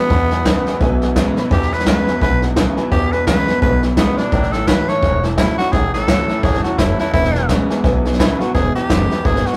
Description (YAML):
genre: rockabilly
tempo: 170 BPM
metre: 4/4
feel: swing 59% on 8ths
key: E major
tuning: A4 = 440 Hz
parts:
  - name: raspy tenor saxophone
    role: melody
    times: 0.0-9.6 s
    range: B3 to C#5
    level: -22 LUFS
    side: equal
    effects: none
  - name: honky-tonk upright piano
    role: accompaniment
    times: 0.0-9.6 s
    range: B4 to B5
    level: -28 LUFS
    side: equal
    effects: none
  - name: picked steel-string acoustic guitar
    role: accompaniment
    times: 0.0-9.6 s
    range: E2 to E4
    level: -26 LUFS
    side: equal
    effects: none
  - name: electric guitar through a small old amp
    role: riff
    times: 0.0-9.6 s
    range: E2 to F#3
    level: -25 LUFS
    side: equal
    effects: none
  - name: upright bass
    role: bass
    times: 0.1-9.5 s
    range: E1 to E2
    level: -23 LUFS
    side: equal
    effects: none
  - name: jazz brush drum kit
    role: drums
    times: 0.1-9.6 s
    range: hi-hat, kick drum, snare drum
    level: -20 LUFS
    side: equal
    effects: none
room: moderate studio ambience, RT60 0.5 s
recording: rough rehearsal-room recording, tube saturation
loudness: -16 LUFS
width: mono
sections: 0.0-9.6 A section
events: tenor saxophone solo 0.0-9.6; honky-tonk piano fill 0.5-1.5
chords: 0.0 E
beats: | 0.10 0.46 0.81 1.16 | 1.51 1.87 2.22 2.57 | 2.92 3.27 3.63 3.98 | 4.33 4.68 5.03 5.39 | 5.74 6.09 6.44 6.79 | 7.14 7.50 7.85 8.20 | 8.55 8.91 9.26